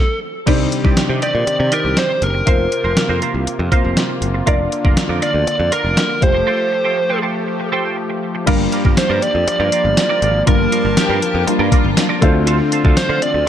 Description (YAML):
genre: 1980s-style pop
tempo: 120 BPM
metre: 4/4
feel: straight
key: G minor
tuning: A4 = 441 Hz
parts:
  - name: biting lead guitar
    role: melody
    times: 0.0-13.5 s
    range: A4 to D5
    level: -19 LUFS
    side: right 1 dB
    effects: overdrive, tape echo
  - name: dark baby grand piano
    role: accompaniment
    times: 0.5-13.5 s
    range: G2 to D5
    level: -22 LUFS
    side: left 2 dB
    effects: none
  - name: brassy analog pad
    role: sustained chords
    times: 0.5-13.5 s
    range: C3 to A5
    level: -24 LUFS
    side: equal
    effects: chorus
  - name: twelve-string electric guitar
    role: riff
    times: 0.5-13.4 s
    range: Eb4 to G5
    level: -24 LUFS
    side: right 5 dB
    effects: analog chorus
  - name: modern bright picked electric bass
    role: bass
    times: 0.5-13.4 s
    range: F1 to D3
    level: -20 LUFS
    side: equal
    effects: none
  - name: clean 12-bit digital drum machine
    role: drums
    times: 0.5-13.3 s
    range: crash cymbal, hi-hat, kick drum, snare drum, tambourine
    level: -17 LUFS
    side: equal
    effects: gated reverb
  - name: warm studio violin section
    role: second line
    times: 11.0-12.5 s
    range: F4 to G4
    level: -25 LUFS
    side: left 1 dB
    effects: tape echo
room: light reverb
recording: none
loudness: -14 LUFS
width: side -10 dB against mid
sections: 0.5-8.5 A section; 8.5-13.5 B section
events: stop 0.0-0.5; break 6.5-8.5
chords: 0.5 Cmadd9; 2.5 Fsus4; 4.5 Bb/F; 6.2 Fadd9; 8.5 Gm7; 12.2 Dm7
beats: | 0.47 0.97 1.47 1.97 | 2.47 2.97 3.47 3.97 | 4.47 4.97 5.47 5.97 | 6.47 6.97 7.47 7.97 | 8.47 8.97 9.47 9.97 | 10.47 10.97 11.47 11.97 | 12.47 12.97 13.47